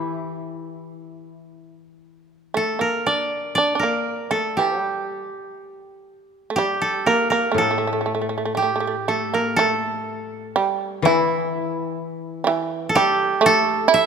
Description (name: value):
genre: japanese traditional, Japanese chamber music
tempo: 57-64 BPM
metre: 2/4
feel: rubato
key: A in sen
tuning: A4 = 439 Hz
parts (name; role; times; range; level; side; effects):
- koto; melody; 0.0-14.1 s; E4 to E5; -21 LUFS; right 2 dB; none
- koto; accompaniment; 0.0-2.6, 7.5-13.9 s; A2 to E3; -27 LUFS; left 9 dB; none
- shamisen; second line; 2.5-14.1 s; E3 to E4; -22 LUFS; right 4 dB; none
room: moderate church reverb, RT60 2.4 s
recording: none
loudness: -19 LUFS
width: side -6 dB against mid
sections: 0.0-9.6 A section; 9.6-14.1 B section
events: none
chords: none